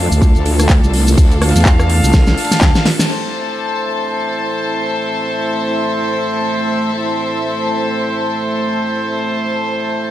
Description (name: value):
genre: bass house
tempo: 125 BPM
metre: 4/4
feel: swing 58% on 16ths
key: A minor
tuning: A4 = 440 Hz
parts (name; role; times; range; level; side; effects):
- dark analog pad; sustained chords; 0.0-10.1 s; A3 to D5; -23 LUFS; right 2 dB; chorus, sidechain pumping
- wobble bass; bass; 0.0-2.7 s; C2 to E2; -14 LUFS; equal; chorus, sidechain pumping
- rich studio string section; texture; 0.0-10.1 s; C4 to A5; -21 LUFS; left 4 dB; sidechain pumping
- maracas; percussion; 0.1-3.1 s; none; -24 LUFS; equal; none
- electronic kick drum; drums; 0.2-2.7 s; none; -11 LUFS; equal; none
- warm soul drum kit; drums; 0.2-3.0 s; hi-hat, ride cymbal, snare drum; -31 LUFS; right 2 dB; none
- big-room dance drum kit; drums; 0.5-3.2 s; crash cymbal, handclaps, hi-hat, rim click, snare drum; -17 LUFS; equal; none
- clear horn section; stabs; 1.4-10.1 s; A3 to F5; -20 LUFS; right 2 dB; vintage 12-bit sampler grit, sidechain pumping, low-pass filter, dub echo
room: light reverb, studio ambience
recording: none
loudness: -13 LUFS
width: side -12 dB against mid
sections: 0.0-3.1 A section; 3.1-10.1 B section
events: drum fill 2.1-3.1; band accent 3.0; filter sweep on analog synth pad 3.1-10.1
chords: 0.0 Dm; 3.1 Am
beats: 0.22 0.70 | 1.18 1.66 2.14 2.62 | 3.10 3.58 4.06 4.54 | 5.02 5.50 5.98 6.46 | 6.94 7.42 7.90 8.38 | 8.86 9.34 9.82